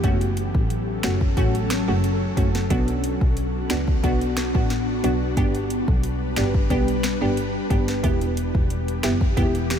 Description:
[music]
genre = dancehall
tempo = 90 BPM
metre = 4/4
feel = straight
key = E dorian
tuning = A4 = 442 Hz
[part]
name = glassy wavetable pluck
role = accompaniment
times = 0.0-9.6 s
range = A3 to G4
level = -26 LUFS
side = right 1 dB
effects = chorus
[part]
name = ethereal airy pad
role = sustained chords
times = 0.0-9.8 s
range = E3 to B4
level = -27 LUFS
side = left 2 dB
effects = ensemble chorus, built-in reverb, sidechain pumping
[part]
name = rich double bass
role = bass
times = 0.0-9.8 s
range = E1 to C#2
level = -25 LUFS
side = equal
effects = none
[part]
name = afro-pop drum kit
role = drums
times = 0.0-9.8 s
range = finger snaps, hi-hat, kick drum, snare drum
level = -24 LUFS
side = equal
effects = none
[sound]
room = light reverb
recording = none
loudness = -20 LUFS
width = side -8 dB against mid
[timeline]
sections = 0.0-9.8 A section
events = none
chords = 0.0 F#m; 2.7 Bm; 5.4 G; 8.0 Em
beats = | 0.04 0.70 1.37 2.04 | 2.70 3.37 4.04 4.70 | 5.37 6.04 6.70 7.37 | 8.04 8.70 9.37

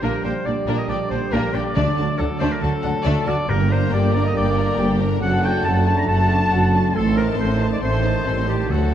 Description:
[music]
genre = cinematic, heroic adventure film score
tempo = 139 BPM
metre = 4/4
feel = straight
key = G harmonic minor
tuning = A4 = 440 Hz
[part]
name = clear symphonic violin section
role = melody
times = 0.0-8.9 s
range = Bb4 to C6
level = -31 LUFS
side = left 4 dB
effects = none
[part]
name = clear oboe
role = second line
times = 0.0-8.9 s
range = G4 to Bb5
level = -26 LUFS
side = left 1 dB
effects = none
[part]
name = warm studio violin section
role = second line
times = 0.0-8.9 s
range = A3 to C5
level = -31 LUFS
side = left 4 dB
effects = none
[part]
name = warm symphonic viola section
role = accompaniment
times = 0.0-8.9 s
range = A3 to F#4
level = -29 LUFS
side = equal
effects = none
[part]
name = warm trombone section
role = sustained chords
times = 0.0-8.9 s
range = D3 to Bb3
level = -27 LUFS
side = right 2 dB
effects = none
[part]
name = mellow trumpet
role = stabs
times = 0.0-8.9 s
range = G4 to Bb5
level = -28 LUFS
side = equal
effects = none
[part]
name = rich symphonic double bass section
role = bass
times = 0.0-8.9 s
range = F#1 to D2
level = -23 LUFS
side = right 1 dB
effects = none
[part]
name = warm symphonic cello section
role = bass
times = 0.0-8.9 s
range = D2 to D3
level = -23 LUFS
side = right 1 dB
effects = none
[part]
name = timpani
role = percussion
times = 1.8-4.1, 8.7-8.9 s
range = G2 to D3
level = -27 LUFS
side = left 2 dB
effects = none
[sound]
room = moderate scoring stage reverb, RT60 1.8 s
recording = dark, warm production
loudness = -17 LUFS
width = side -10 dB against mid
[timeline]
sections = 0.0-8.9 A section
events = none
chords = 0.0 Gm/Bb; 1.8 D; 3.5 Gm; 5.2 D/F#; 7.0 Adim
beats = | 0.03 0.46 0.89 1.32 | 1.76 2.19 2.62 3.06 | 3.49 3.92 4.35 4.79 | 5.22 5.65 6.08 6.52 | 6.95 7.39 7.82 8.26 | 8.70

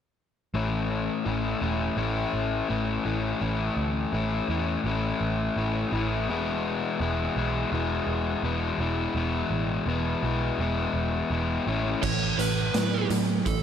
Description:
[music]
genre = classic rock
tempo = 84 BPM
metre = 4/4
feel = straight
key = unclear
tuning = A4 = 437 Hz
[part]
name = overdriven semi-hollow guitar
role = riff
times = 0.5-13.6 s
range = E2 to E4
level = -27 LUFS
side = left 4 dB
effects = none
[part]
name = vintage muted picked electric bass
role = bass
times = 0.5-13.6 s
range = E1 to A2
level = -30 LUFS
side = right 2 dB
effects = none
[part]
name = dark smooth lead guitar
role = melody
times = 12.0-13.6 s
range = A4 to C#5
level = -30 LUFS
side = right 5 dB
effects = overdrive, slapback echo
[part]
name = overdriven semi-hollow guitar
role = riff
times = 12.0-13.6 s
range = A2 to F#3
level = -31 LUFS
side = right 14 dB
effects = spring reverb
[part]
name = raw garage drum kit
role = drums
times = 12.0-13.6 s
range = crash cymbal, hi-hat, kick drum, snare drum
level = -28 LUFS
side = right 1 dB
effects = none
[sound]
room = moderate lush hall reverb, RT60 2.4 s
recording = big arena sound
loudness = -25 LUFS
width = side -8 dB against mid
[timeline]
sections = 0.5-12.0 A section; 12.0-13.6 B section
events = none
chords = 0.5 A; 6.3 E; 11.7 A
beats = | 0.55 1.26 1.98 2.70 | 3.42 4.13 4.85 5.57 | 6.29 7.01 7.72 8.44 | 9.16 9.88 10.59 11.31 | 12.03 12.75 13.46

